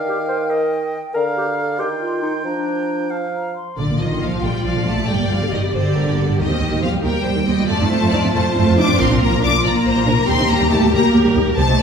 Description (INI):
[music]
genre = classical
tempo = 92 BPM (dotted quarters)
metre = 6/8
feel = straight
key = Bb major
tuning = A4 = 441 Hz
[part]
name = clear oboe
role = second line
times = 0.0-3.6 s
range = Eb5 to G5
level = -26 LUFS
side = right 1 dB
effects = none
[part]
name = mellow hollow silver concert flute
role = second line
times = 0.0-3.8 s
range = G5 to C6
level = -30 LUFS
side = left 3 dB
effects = none
[part]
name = mellow bassoon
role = accompaniment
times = 0.0-3.5 s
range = D3 to F3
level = -23 LUFS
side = right 3 dB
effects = none
[part]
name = mellow clarinet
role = second line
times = 0.1-3.1 s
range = D4 to C5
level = -24 LUFS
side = left 2 dB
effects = none
[part]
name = clear symphonic violin section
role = melody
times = 3.8-11.8 s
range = D5 to D6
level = -22 LUFS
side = left 4 dB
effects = none
[part]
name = warm symphonic viola section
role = accompaniment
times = 3.8-11.8 s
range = D3 to G4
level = -21 LUFS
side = equal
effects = none
[part]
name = rich studio double bass section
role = bass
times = 3.8-11.8 s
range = G1 to F2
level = -20 LUFS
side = right 1 dB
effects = none
[part]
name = rich symphonic cello section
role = bass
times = 3.8-11.8 s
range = D3 to D4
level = -20 LUFS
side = right 2 dB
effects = none
[part]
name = rich symphonic violin section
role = second line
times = 4.4-11.8 s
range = G4 to Eb5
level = -24 LUFS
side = left 1 dB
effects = none
[sound]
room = wet recital hall reverb, RT60 1.4 s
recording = recorded in a church or concert hall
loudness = -15 LUFS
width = side -6 dB against mid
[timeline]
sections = 0.0-3.8 A section; 3.8-11.8 B section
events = none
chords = 0.0 Eb; 1.1 Bb/D; 1.8 Cm/Eb; 2.5 Bb/F; 3.8 Bb; 5.1 G5; 6.4 Cm/Eb (rootless); 7.7 F; 9.0 Bb; 10.3 Eb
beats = 0.51 | 1.15 1.79 | 2.45 3.12 | 3.78 4.43 | 5.09 5.74 | 6.39 7.04 | 7.69 8.34 | 8.99 9.63 | 10.28 10.93 | 11.58